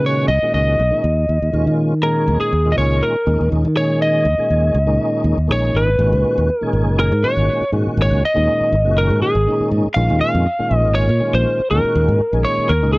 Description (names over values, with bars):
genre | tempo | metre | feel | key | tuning
electric jazz fusion | 121 BPM | 4/4 | swing 53% on 16ths | Eb minor, G# dorian from 6.0 s | A4 = 441 Hz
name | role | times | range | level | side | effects
lightly driven lead guitar | melody | 0.0-13.0 s | Ab4 to E#5 | -18 LUFS | equal | none
tonewheel organ | accompaniment | 0.0-13.0 s | Bb2 to Ab4 | -21 LUFS | equal | slow rotary speaker, overdrive, chorus vibrato
fingered electric bass | bass | 0.0-13.0 s | F#1 to Eb3 | -17 LUFS | equal | none
room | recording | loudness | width
little or no reverb | dry, close 1970s-style studio recording | -14 LUFS | side -23 dB against mid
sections
0.0-6.0 A section; 6.0-13.0 B section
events
none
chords
0.0 Dbsus4; 1.0 Eb9sus4; 6.0 G#m11; 10.0 A#m7; 11.7 D#m7